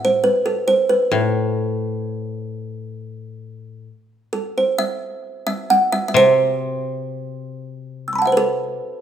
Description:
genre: japanese traditional, Japanese chamber music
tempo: 62-72 BPM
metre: 4/4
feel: rubato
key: A kumoi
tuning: A4 = 441 Hz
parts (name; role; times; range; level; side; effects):
- kalimba; melody; 0.0-9.0 s; A4 to E6; -17 LUFS; right 2 dB; none
- koto; accompaniment; 0.0-8.8 s; A2 to C3; -24 LUFS; left 4 dB; none
room: light reverb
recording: close, detailed microphones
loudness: -17 LUFS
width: side -9 dB against mid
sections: 0.0-4.8 A section; 4.8-9.0 B section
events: none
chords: none

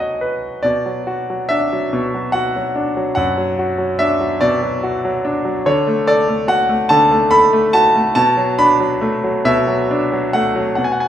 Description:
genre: classical, lyrical solo piano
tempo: 71 BPM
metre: 3/4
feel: rubato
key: B minor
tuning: A4 = 440 Hz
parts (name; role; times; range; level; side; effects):
- bright grand piano; solo; 0.0-11.1 s; F#2 to B5; -14 LUFS; equal; none
room: wet recital hall reverb, RT60 1.5 s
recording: recorded in a church or concert hall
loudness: -14 LUFS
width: side -10 dB against mid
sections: 0.7-10.8 A section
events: grand piano fill 0.0-0.7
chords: 0.0 B; 0.7 Bm; 5.7 D; 8.2 Bm7

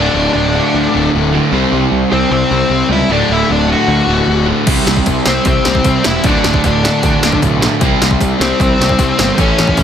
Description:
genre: punk rock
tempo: 153 BPM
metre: 4/4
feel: straight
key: unclear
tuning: A4 = 440 Hz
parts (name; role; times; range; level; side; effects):
- dark smooth lead guitar; melody; 0.0-9.8 s; C4 to F#5; -17 LUFS; left 3 dB; overdrive, ping-pong delay
- crunchy overdriven guitar; riff; 0.0-9.8 s; D2 to C4; -18 LUFS; left 10 dB; none
- overdriven semi-hollow guitar; riff; 0.0-9.8 s; D2 to C4; -18 LUFS; right 10 dB; none
- overdriven semi-hollow guitar; riff; 0.0-9.8 s; D2 to C5; -19 LUFS; equal; none
- fuzz picked electric bass; bass; 0.0-9.8 s; D1 to D2; -18 LUFS; equal; overdrive
- punchy analog drum machine; drums; 4.7-9.8 s; crash cymbal, hi-hat, kick drum, snare drum; -15 LUFS; equal; overdrive
room: light reverb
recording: none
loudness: -10 LUFS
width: side -8 dB against mid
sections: 0.0-9.8 A section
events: none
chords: 0.0 D; 1.5 C; 3.1 D; 4.7 C; 6.2 D; 7.8 C

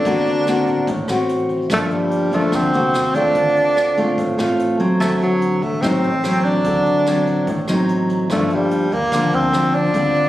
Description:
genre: bossa nova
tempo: 146 BPM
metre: 4/4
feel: straight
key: unclear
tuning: A4 = 440 Hz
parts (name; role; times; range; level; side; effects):
- mellow tenor saxophone; melody; 0.0-10.3 s; F#3 to D4; -18 LUFS; right 1 dB; none
- nylon-string guitar; accompaniment; 0.0-10.3 s; G2 to F#4; -18 LUFS; left 1 dB; none
- upright bass; bass; 0.1-10.3 s; G1 to Eb2; -30 LUFS; equal; none
- jazz brush drum kit; drums; 0.1-10.2 s; hi-hat, kick drum, rim click; -31 LUFS; right 1 dB; none
room: moderate studio reverb, RT60 0.6 s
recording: recorded on a phone in the room, studio reverb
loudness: -15 LUFS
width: side -14 dB against mid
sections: 0.0-10.3 A section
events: none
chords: 0.1 D7b13; 1.7 Gm7; 2.9 Ebm; 3.4 Dm7; 5.0 D7b9; 8.3 Gm7

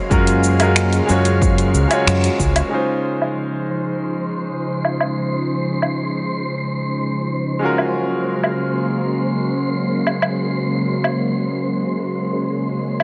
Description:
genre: sunset chillout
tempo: 92 BPM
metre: 4/4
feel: straight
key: Db major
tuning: A4 = 440 Hz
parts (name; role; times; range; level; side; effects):
- bright concert grand piano; accompaniment; 0.0-13.0 s; Ab3 to Db5; -25 LUFS; equal; delay
- soft string machine; sustained chords; 0.0-13.0 s; Db3 to F5; -24 LUFS; equal; ensemble chorus
- wind-like tuned noise texture; texture; 0.0-13.0 s; C5 to C6; -32 LUFS; equal; built-in reverb
- fingered electric bass; bass; 0.1-2.6 s; Db2 to Gb2; -19 LUFS; equal; none
- deep house drum kit; drums; 0.1-13.0 s; cabasa, finger snaps, hi-hat, woodblock; -23 LUFS; equal; overdrive, low-pass filter on perc, low-pass filter on hats, low-pass filter on snare
- electronic kick drum; drums; 0.1-2.5 s; none; -21 LUFS; equal; overdrive
room: moderate lush hall reverb, RT60 2.6 s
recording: nothing above 10.3 kHz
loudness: -19 LUFS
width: mono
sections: 0.0-2.7 A section; 2.7-13.0 B section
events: band accent 2.1-2.4; filter sweep on drum 2.7-13.0; filter sweep on string machine 2.7-13.0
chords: 0.0 Gbmaj9; 2.7 Dbmaj9; 7.6 Gbmaj9

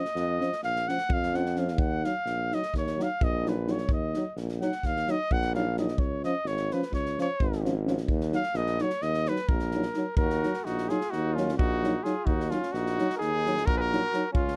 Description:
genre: balkan folk, Balkan brass band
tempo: 258 BPM (eighths)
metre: 9/8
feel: straight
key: Eb minor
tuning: A4 = 442 Hz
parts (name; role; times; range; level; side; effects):
- mellow cornet; melody; 0.0-14.6 s; F4 to Gb5; -33 LUFS; equal; none
- dark euphonium; accompaniment; 0.0-14.2 s; Db4 to Eb4; -34 LUFS; equal; none
- natural country drum kit; percussion; 0.1-14.5 s; kick drum, snare drum; -34 LUFS; equal; none
- warm tuba; bass; 0.2-14.6 s; Ab1 to F2; -33 LUFS; equal; none
- warm euphonium; accompaniment; 0.4-14.2 s; F3 to Gb3; -36 LUFS; equal; none
- warm flugelhorn; second line; 10.2-14.6 s; Db4 to Ab4; -39 LUFS; equal; none
room: little or no reverb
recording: dark, warm production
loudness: -28 LUFS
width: mono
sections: 0.0-10.2 A section; 10.2-14.6 B section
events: cornet solo 0.0-10.2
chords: 0.0 Bbm; 1.8 Ebm; 6.0 Db; 8.1 Ebm

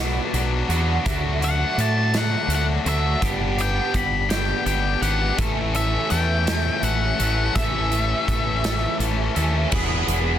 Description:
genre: indie rock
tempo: 55 BPM (dotted quarters)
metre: 6/8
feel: straight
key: unclear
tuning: A4 = 440 Hz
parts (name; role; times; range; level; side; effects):
- distorted electric guitar; riff; 0.0-10.4 s; E3 to A4; -27 LUFS; left 8 dB; overdrive
- overdriven electric guitar; riff; 0.0-10.4 s; E3 to A4; -28 LUFS; right 6 dB; ensemble chorus, slapback echo
- growling fingered electric bass; bass; 0.0-10.4 s; E1 to A2; -24 LUFS; equal; overdrive
- big rock drum kit; drums; 0.3-10.3 s; crash cymbal, hi-hat, kick drum, snare drum; -28 LUFS; right 1 dB; none
- octave-fuzz lead guitar; melody; 1.4-9.0 s; E5 to B5; -25 LUFS; left 4 dB; distortion, slapback echo
room: little or no reverb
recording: dense, heavily limited modern master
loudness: -19 LUFS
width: side -10 dB against mid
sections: 0.0-9.7 A section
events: none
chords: 0.0 Bm; 1.1 D; 3.2 G; 5.4 A; 9.7 E7

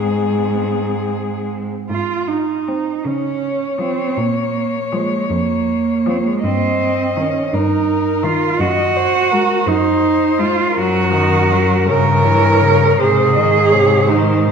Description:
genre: classical, lyrical piece for cello ensemble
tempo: 54 BPM (dotted quarters)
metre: 6/8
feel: uneven beats, rubato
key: Ab major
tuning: A4 = 440 Hz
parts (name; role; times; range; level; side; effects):
- muted cello; melody; 0.0-14.5 s; Ab4 to Eb5; -22 LUFS; left 6 dB; none
- muted cello; second line; 0.0-14.5 s; Ab3 to Bb4; -16 LUFS; right 4 dB; none
- muted cello; accompaniment; 0.0-14.5 s; C3 to C4; -22 LUFS; left 2 dB; none
- muted cello; bass; 0.0-14.5 s; F2 to Db3; -21 LUFS; equal; none
room: wet concert hall reverb, RT60 1.9 s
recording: minimal, uncompressed stereo recording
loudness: -14 LUFS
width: side -6 dB against mid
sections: 0.0-1.9 A section; 1.9-14.5 B section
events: none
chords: 0.0 Ab; 3.0 Db; 4.2 Bbm; 6.4 Eb/G; 8.6 Ab7/Gb; 10.8 Ebm/Gb; 11.9 Gdim7; 13.0 Ab

